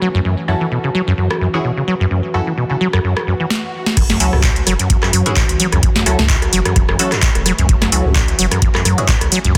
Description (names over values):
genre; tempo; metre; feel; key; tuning
acid house; 129 BPM; 4/4; swing 55% on 16ths; F# minor; A4 = 440 Hz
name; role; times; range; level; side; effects
warbly tape-like pad; sustained chords; 0.0-9.6 s; E3 to F#4; -27 LUFS; equal; chorus, built-in reverb, phaser, sidechain pumping
acid bass, saw; riff; 0.0-9.6 s; F#2 to F#3; -20 LUFS; equal; analog chorus, delay
downlifter and swell; sound effects; 0.0-0.2, 3.2-4.0 s; none; -37 LUFS; equal; none
band-passed chord stab; stabs; 0.5-9.1 s; C#4 to A4; -28 LUFS; equal; phaser, lush chorus, delay
booming analog drum machine; drums; 1.3-9.6 s; crash cymbal, handclaps, hi-hat, rim click, snare drum; -20 LUFS; equal; overdrive
warm sub bass; bass; 4.0-9.5 s; E1 to F#2; -20 LUFS; equal; sidechain pumping
electronic kick drum; drums; 4.0-9.6 s; none; -18 LUFS; equal; overdrive
room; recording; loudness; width
light reverb, digital ambience; dense, heavily limited modern master; -15 LUFS; mono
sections
0.0-4.0 A section; 4.0-9.6 B section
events
swell 3.2-4.0; drum fill 3.5-4.0; drop 4.0-9.6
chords
0.0 F#m7